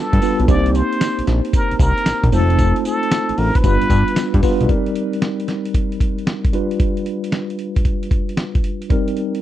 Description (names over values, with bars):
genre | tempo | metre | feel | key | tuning
R&B, new jack swing | 114 BPM | 4/4 | swing 67% on 16ths | C dorian | A4 = 440 Hz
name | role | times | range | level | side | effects
trumpet with plunger mute | melody | 0.0-4.4 s | A4 to D5 | -22 LUFS | equal | none
bright tine electric piano | accompaniment | 0.0-9.4 s | G3 to C5 | -21 LUFS | equal | medium stereo tremolo
fat analog bass | bass | 0.1-4.7 s | F1 to G2 | -17 LUFS | equal | none
dusty soul sampler-style drum kit | drums | 0.1-9.4 s | hi-hat, kick drum, snare drum, tambourine | -18 LUFS | equal | none
room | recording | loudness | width
little or no reverb | dry, close 1970s-style studio recording | -15 LUFS | side -12 dB against mid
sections
0.0-4.7 A section; 4.7-9.4 B section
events
none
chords
0.5 Cm7; 2.3 F7; 3.6 G7; 4.7 Cm7; 6.5 G7; 8.9 Cm7